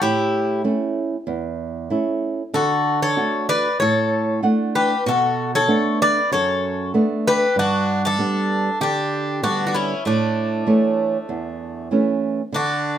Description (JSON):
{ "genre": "greek folk, Greek bouzouki band", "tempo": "96 BPM", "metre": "4/4", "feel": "straight", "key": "unclear", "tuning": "A4 = 440 Hz", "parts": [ { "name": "Greek bouzouki", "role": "melody", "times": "0.0-13.0 s", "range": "D4 to D5", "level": "-22 LUFS", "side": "left 1 dB", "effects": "none" }, { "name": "Greek bouzouki", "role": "second line", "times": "0.0-13.0 s", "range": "A3 to B4", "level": "-24 LUFS", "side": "left 3 dB", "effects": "none" }, { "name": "flamenco guitar", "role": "accompaniment", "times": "0.0-13.0 s", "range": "E2 to F#5", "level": "-21 LUFS", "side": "right 3 dB", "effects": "none" } ], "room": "moderate studio reverb, RT60 0.5 s", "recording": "none", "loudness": "-18 LUFS", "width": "side -10 dB against mid", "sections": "0.0-12.5 A section", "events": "none", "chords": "0.0 A; 2.5 D; 5.1 Bm7; 7.6 G; 10.1 A", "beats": "| 0.01 0.65 1.28 1.91 | 2.54 3.17 3.80 4.43 | 5.06 5.68 6.31 6.94 | 7.56 8.19 8.81 9.43 | 10.05 10.67 11.29 11.91 | 12.52" }